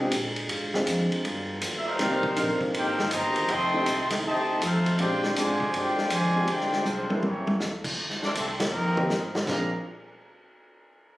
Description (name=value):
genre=jazz, big band swing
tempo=160 BPM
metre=4/4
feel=swing 65% on 8ths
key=Bb major, Bb mixolydian from 8.0 s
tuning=A4 = 440 Hz
part: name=warm concert grand piano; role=accompaniment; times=0.0-9.7 s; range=G3 to D5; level=-30 LUFS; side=equal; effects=none
part: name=dark trombone section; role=sustained chords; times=0.0-8.0 s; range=C#3 to A4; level=-37 LUFS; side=equal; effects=none
part: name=upright bass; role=bass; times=0.0-9.7 s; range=Eb1 to C3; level=-32 LUFS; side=equal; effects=none
part: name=vintage drum kit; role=drums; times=0.1-9.6 s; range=crash cymbal, hi-hat, kick drum, ride cymbal, snare drum, toms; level=-30 LUFS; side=equal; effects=none
part: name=warm trumpet section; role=melody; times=1.8-9.7 s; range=Ab3 to C6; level=-27 LUFS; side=equal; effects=none
part: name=clear trombone section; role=second line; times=1.9-9.7 s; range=Bb2 to G4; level=-34 LUFS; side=equal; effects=none
room=light reverb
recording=recorded on a phone in the room, studio reverb, compression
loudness=-24 LUFS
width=side -16 dB against mid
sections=0.0-8.0 A section; 8.0-9.5 B section; 9.5-11.0 C section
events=drum fill 6.9-7.6, 8.7-9.5; band accent 8.5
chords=0.5 Dm7b5; 1.2 G7alt; 2.0 Cm7; 3.5 F13; 5.0 Bb13; 7.2 A7b9; 8.0 Dm7; 8.7 F7sus4; 9.5 Bb9